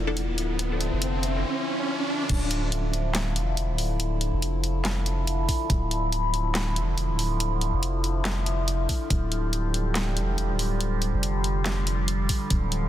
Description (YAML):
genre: deep dubstep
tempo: 141 BPM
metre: 4/4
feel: swing 56% on 16ths, half-time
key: D minor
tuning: A4 = 440 Hz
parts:
  - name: overtone-sweeping drone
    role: sustained chords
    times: 0.0-12.9 s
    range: D3 to E4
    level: -30 LUFS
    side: left 1 dB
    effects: chorus, built-in reverb, phaser
  - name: soft dub sub bass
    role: bass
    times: 0.0-12.9 s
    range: D1 to F1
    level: -26 LUFS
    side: equal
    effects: none
  - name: riser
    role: sound effects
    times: 0.0-2.3 s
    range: none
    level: -30 LUFS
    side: right 1 dB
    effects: none
  - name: dubstep drum kit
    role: drums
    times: 0.2-12.8 s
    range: crash cymbal, handclaps, hi-hat, snare drum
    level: -30 LUFS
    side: equal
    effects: high-pass filter on hats, high-pass filter on snare, high-pass filter on cymbals
  - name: electronic kick drum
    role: drums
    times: 0.6-2.4, 5.5-5.8, 8.9-9.2, 12.3-12.6 s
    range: none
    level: -26 LUFS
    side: equal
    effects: high-pass filter on kick
room: digital ambience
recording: dense, heavily limited modern master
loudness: -24 LUFS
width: side -12 dB against mid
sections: 0.0-2.3 A section; 2.3-12.9 B section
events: build-up 0.0-2.3; riser 0.0-2.3; drop 2.3-12.9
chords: 0.0 Dmadd9